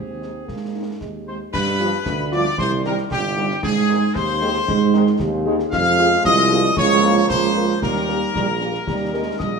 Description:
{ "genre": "military-style march for wind band", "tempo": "114 BPM", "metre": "2/4", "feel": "straight", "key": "unclear", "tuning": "A4 = 441 Hz", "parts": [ { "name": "bright trumpet section", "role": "melody", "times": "0.0-9.6 s", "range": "G4 to F5", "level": "-23 LUFS", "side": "left 1 dB", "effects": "none" }, { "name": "warm euphonium", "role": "second line", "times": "0.0-1.5 s", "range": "Ab3 to C4", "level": "-35 LUFS", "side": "right 4 dB", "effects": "none" }, { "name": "warm tuba", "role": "bass", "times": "0.0-9.6 s", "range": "G1 to Ab2", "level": "-21 LUFS", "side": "right 4 dB", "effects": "none" }, { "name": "mellow French horn section", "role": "accompaniment", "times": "0.2-9.2 s", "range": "Ab3 to Bb4", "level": "-28 LUFS", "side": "left 4 dB", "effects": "none" }, { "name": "concert snare drum, concert bass drum and clash cymbals", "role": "drums", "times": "0.2-9.6 s", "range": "none", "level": "-30 LUFS", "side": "left 3 dB", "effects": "none" }, { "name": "mellow piccolo", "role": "second line", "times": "1.3-9.6 s", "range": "G5 to F6", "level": "-24 LUFS", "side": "left 3 dB", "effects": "none" }, { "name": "dark trombone section", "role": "sustained chords", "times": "1.8-9.5 s", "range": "Eb3 to Bb3", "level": "-26 LUFS", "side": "right 3 dB", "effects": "none" } ], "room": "wet large studio reverb, RT60 1.5 s", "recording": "none", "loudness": "-16 LUFS", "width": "side -5 dB against mid", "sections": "0.0-1.5 A section; 1.5-9.6 B section", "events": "none", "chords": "0.0 Ab; 1.5 G7; 2.6 Cm; 3.6 Ab; 5.7 Fm; 6.8 Bbm/Db; 7.8 Eb", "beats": "| 0.48 1.01 | 1.53 2.06 | 2.58 3.11 | 3.63 4.16 | 4.68 5.21 | 5.73 6.25 | 6.78 7.30 | 7.83 8.35 | 8.87 9.40" }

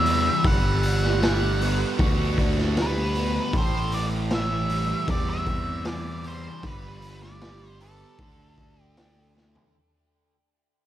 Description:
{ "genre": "psychedelic rock", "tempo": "77 BPM", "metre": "4/4", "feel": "straight", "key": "unclear", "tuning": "A4 = 440 Hz", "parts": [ { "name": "octave-fuzz lead guitar", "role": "melody", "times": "0.0-9.3 s", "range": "A4 to F#5", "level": "-29 LUFS", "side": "equal", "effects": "distortion, tape echo" }, { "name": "fuzz guitar", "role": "riff", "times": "0.0-9.8 s", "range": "A2 to G4", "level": "-29 LUFS", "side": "right 3 dB", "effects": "distortion, phaser, tape echo" }, { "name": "fuzz fingered electric bass", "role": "bass", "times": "0.0-9.6 s", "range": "G1 to E2", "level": "-27 LUFS", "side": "equal", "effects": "overdrive" }, { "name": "raw garage drum kit", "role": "drums", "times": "0.1-9.7 s", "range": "hi-hat, kick drum, snare drum, toms", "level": "-27 LUFS", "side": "equal", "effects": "none" } ], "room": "small room ambience", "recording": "echo-heavy mix", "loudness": "-21 LUFS", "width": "side -12 dB against mid", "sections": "0.0-9.7 A section", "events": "fade-out 0.0-9.7; drum fill 9.4-9.7", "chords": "0.4 Gmaj7; 3.5 Am7; 6.6 G; 8.2 D5", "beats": "| 0.44 1.22 1.99 2.76 | 3.54 4.31 5.08 5.86 | 6.64 7.42 8.19 8.97" }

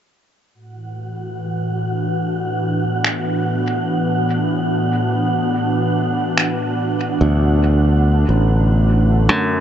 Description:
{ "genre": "ambient dub", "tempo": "72 BPM", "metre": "4/4", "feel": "swing 59% on 16ths", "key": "unclear", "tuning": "A4 = 440 Hz", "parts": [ { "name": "airy breathy pad", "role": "sustained chords", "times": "0.7-9.6 s", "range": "A2 to D4", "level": "-20 LUFS", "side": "equal", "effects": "chorus" }, { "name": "wind-like tuned noise texture", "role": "texture", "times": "0.9-9.6 s", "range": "F#4 to F#5", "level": "-24 LUFS", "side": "right 3 dB", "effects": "built-in reverb" }, { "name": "electronic finger snaps", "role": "drums", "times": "3.0-6.6 s", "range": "none", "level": "-21 LUFS", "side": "equal", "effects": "dub echo" }, { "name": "modern bright fingered electric bass", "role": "bass", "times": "7.2-9.6 s", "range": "A1 to F#2", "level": "-13 LUFS", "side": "equal", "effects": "none" } ], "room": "light reverb, digital ambience", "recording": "nothing above 7.9 kHz", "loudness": "-15 LUFS", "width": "side -10 dB against mid", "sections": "0.5-9.6 A section", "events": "none", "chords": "0.5 Asus4", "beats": "| 0.54 1.38 2.21 3.04 | 3.88 4.71 5.54 6.38 | 7.21 8.04 8.88" }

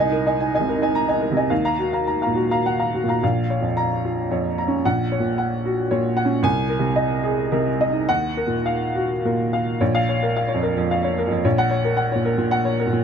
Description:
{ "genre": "neoclassical minimalist piano", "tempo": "104-113 BPM", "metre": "3/4", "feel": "rubato", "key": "Bb minor", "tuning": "A4 = 442 Hz", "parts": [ { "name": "clear upright piano", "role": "solo", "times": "0.0-13.0 s", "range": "Bb1 to Bb5", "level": "-19 LUFS", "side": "equal", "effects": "none" } ], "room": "little or no reverb", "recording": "close, detailed microphones", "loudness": "-19 LUFS", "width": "side -7 dB against mid", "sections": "0.0-3.2 A section; 3.2-9.8 B section; 9.8-13.0 C section", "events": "none", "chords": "0.0 Abadd9/C; 1.5 Ebmadd9; 3.2 Bbm; 4.8 Gb/Bb; 6.4 Abadd9/C; 8.1 Ebmadd9; 9.8 Bbm; 11.4 Gb/Bb", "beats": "0.39 0.94 | 1.51 2.08 2.65 | 3.22 3.76 4.30 | 4.84 5.38 5.91 | 6.45 6.98 7.53 | 8.09 8.66 9.24 | 9.80 10.36 10.90 | 11.45 11.99 12.53" }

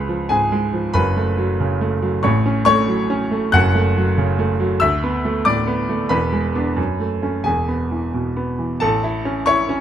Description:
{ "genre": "classical, virtuoso piano study", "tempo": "93 BPM (dotted quarters)", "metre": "6/8", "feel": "rubato", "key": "F# minor, A major from 3.5 s", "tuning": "A4 = 441 Hz", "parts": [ { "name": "clear baby grand piano", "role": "solo", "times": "0.0-9.8 s", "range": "E1 to F#6", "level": "-16 LUFS", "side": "equal", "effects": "none" } ], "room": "light reverb", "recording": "close, detailed microphones", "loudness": "-16 LUFS", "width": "side -10 dB against mid", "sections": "0.0-8.8 A section", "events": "none", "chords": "0.0 C#7; 1.0 F#m; 2.2 F#m/A; 3.5 F#m; 4.8 Bm7/D; 6.1 E7; 6.8 F#m; 7.5 E; 8.8 A", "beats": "0.31 | 0.95 1.60 | 2.24 2.88 | 3.54 4.18 | 4.82 5.46 | 6.11 6.77 | 7.46 8.14 | 8.81 9.47" }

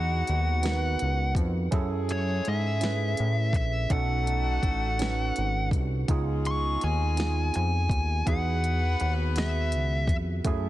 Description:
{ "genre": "slow six-eight R&B", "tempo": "55 BPM (dotted quarters)", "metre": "6/8", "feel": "straight", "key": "unclear", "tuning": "A4 = 440 Hz", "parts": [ { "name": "fuzz lead guitar", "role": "melody", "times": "0.0-10.1 s", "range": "C#5 to C#6", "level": "-31 LUFS", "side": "left 1 dB", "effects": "distortion" }, { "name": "tine electric piano", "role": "accompaniment", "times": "0.0-10.7 s", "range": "D#3 to B4", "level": "-34 LUFS", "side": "right 7 dB", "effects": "overdrive" }, { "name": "warm horn section", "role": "stabs", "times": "0.0-10.7 s", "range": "F#3 to B4", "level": "-39 LUFS", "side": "left 5 dB", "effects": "ping-pong delay" }, { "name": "fat analog bass", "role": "bass", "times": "0.0-10.7 s", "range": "G#1 to A2", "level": "-27 LUFS", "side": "equal", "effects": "none" }, { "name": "smooth R&B drum kit", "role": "drums", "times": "0.3-10.6 s", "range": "hi-hat, kick drum, snare drum", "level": "-29 LUFS", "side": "equal", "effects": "vintage 12-bit sampler grit" } ], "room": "digital ambience", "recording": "dense, heavily limited modern master", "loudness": "-24 LUFS", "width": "side -14 dB against mid", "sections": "0.0-10.7 A section", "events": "none", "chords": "0.0 Emaj9; 1.7 F#m9; 3.9 B9; 6.1 C#9; 8.3 Emaj9", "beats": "0.63 | 1.72 2.81 | 3.90 4.99 | 6.08 7.17 | 8.26 9.36 | 10.45" }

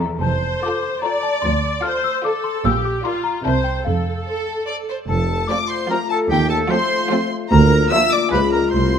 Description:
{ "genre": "cinematic, playful, whimsical film cue", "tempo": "148 BPM", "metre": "3/4", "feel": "straight", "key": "F major", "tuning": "A4 = 440 Hz", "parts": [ { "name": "rich chamber violin section", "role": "melody", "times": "0.0-9.0 s", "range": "C5 to E6", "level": "-24 LUFS", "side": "left 3 dB", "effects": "none" }, { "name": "small celesta", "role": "melody", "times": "0.0-9.0 s", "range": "F5 to F6", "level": "-25 LUFS", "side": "left 8 dB", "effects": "none" }, { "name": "rich chamber violin section", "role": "second line", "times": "0.0-8.6 s", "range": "C4 to D5", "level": "-28 LUFS", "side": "left 2 dB", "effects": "none" }, { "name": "clear studio double bass section", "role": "bass", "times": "0.0-9.0 s", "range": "F1 to Eb2", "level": "-22 LUFS", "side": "right 4 dB", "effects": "none" }, { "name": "rich chamber cello section", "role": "bass", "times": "0.0-9.0 s", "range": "C2 to C3", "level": "-22 LUFS", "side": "right 2 dB", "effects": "none" }, { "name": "rich symphonic viola section", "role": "accompaniment", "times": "0.2-8.6 s", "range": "F3 to D5", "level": "-24 LUFS", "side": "equal", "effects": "none" }, { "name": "clear oboe", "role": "second line", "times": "5.1-9.0 s", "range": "G4 to E5", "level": "-25 LUFS", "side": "right 2 dB", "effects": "none" }, { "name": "mellow hollow flute section", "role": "second line", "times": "5.1-9.0 s", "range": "G4 to E5", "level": "-25 LUFS", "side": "equal", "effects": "none" }, { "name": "dark French horn section", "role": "sustained chords", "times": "5.1-9.0 s", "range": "Ab3 to F4", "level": "-23 LUFS", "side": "left 6 dB", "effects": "none" }, { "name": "warm tuba", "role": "bass", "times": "5.1-9.0 s", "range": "F1 to Eb2", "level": "-23 LUFS", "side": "right 4 dB", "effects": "none" } ], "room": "moderate scoring stage reverb, RT60 1.7 s", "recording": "none", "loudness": "-16 LUFS", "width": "side -8 dB against mid", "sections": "0.0-5.1 A section; 5.1-9.0 A section", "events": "none", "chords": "0.2 F; 1.4 Dm7; 2.6 Bb; 3.5 C9; 3.9 F; 6.3 F7/Eb; 7.5 Bb/D; 8.3 Db7", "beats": "| 0.22 0.63 1.04 | 1.44 1.85 2.25 | 2.65 3.05 3.45 | 3.86 4.27 4.68 | 5.09 5.50 5.90 | 6.30 6.71 7.11 | 7.51 7.91 8.32 | 8.72" }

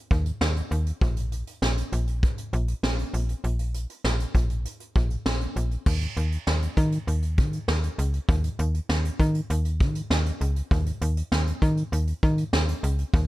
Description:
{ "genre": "synth-pop", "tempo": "99 BPM", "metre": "4/4", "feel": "straight", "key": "unclear", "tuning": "A4 = 440 Hz", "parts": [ { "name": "slap-like FM bass", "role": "bass", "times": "0.1-13.3 s", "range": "Bb1 to Eb3", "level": "-24 LUFS", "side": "equal", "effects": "none" }, { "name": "vintage brush drum kit", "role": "drums", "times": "0.1-13.3 s", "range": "crash cymbal, hi-hat, kick drum, snare drum", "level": "-26 LUFS", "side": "equal", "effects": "none" } ], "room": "little or no reverb", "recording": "none", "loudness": "-23 LUFS", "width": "side -17 dB against mid", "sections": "0.0-5.9 A section; 5.9-13.3 B section", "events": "none", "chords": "none", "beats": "0.41 | 1.01 1.62 2.23 2.83 | 3.44 4.04 4.65 5.26 | 5.86 6.47 7.08 7.68 | 8.29 8.89 9.50 10.11 | 10.71 11.32 11.92 12.53 | 13.14" }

